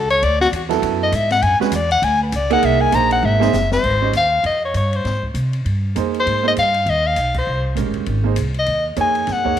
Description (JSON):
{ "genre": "modal jazz", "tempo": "199 BPM", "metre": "4/4", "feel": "swing 60% on 8ths", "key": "F minor from 3.8 s", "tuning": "A4 = 439 Hz", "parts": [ { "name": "clear soprano saxophone", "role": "melody", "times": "0.0-9.6 s", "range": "F#4 to Bb5", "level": "-17 LUFS", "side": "left 3 dB", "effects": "slapback echo" }, { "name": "upright bass", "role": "bass", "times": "0.0-9.6 s", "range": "F1 to C3", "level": "-21 LUFS", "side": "equal", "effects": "none" }, { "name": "open jazz drum kit", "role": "drums", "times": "0.1-9.6 s", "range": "crash cymbal, hi-hat, kick drum, ride cymbal, snare drum", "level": "-30 LUFS", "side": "left 5 dB", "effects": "none" }, { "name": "warm baby grand piano", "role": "accompaniment", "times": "0.7-9.6 s", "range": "F#3 to Eb5", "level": "-21 LUFS", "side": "right 14 dB", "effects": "none" } ], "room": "light reverb, small room ambience", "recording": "1960s-style stereo", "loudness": "-15 LUFS", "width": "side -10 dB against mid", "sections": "0.0-3.8 A section; 3.8-9.6 B section", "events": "soprano saxophone solo 0.0-3.8; drum fill 3.2-3.8; band accent 7.3", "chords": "0.0 Bm11; 2.6 C7alt; 3.8 Fm9; 8.7 Ebm9" }